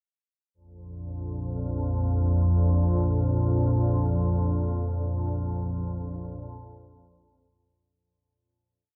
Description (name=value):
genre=ambient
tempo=free time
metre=none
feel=none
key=unclear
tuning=A4 = 440 Hz
part: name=organ-like drone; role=solo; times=0.9-8.0 s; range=Bb1 to F2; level=-26 LUFS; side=equal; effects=ensemble chorus, built-in reverb
room=moderate huge ambient reverb, RT60 7.2 s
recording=none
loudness=-26 LUFS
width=mono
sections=0.5-7.9 A section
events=fade-out 4.2-7.9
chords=0.5 Bb5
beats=free time